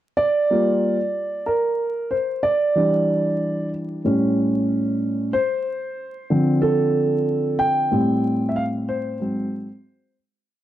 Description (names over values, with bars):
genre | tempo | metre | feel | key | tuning
hip hop | 93 BPM | 4/4 | swing 58% on 16ths | G minor | A4 = 440 Hz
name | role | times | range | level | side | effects
dark grand piano | solo | 0.2-10.1 s | Ab2 to G5 | -19 LUFS | right 1 dB | none
room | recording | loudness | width
moderate plate reverb, RT60 2.5 s | dark, warm production, vinyl crackle | -19 LUFS | side -12 dB against mid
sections
0.2-10.5 head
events
grand piano solo 0.2-10.5; fade-out 7.9-10.5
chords
0.2 Gm7; 2.8 Em7; 4.1 A7; 5.3 Dm7; 7.9 Am7; 9.2 Ab7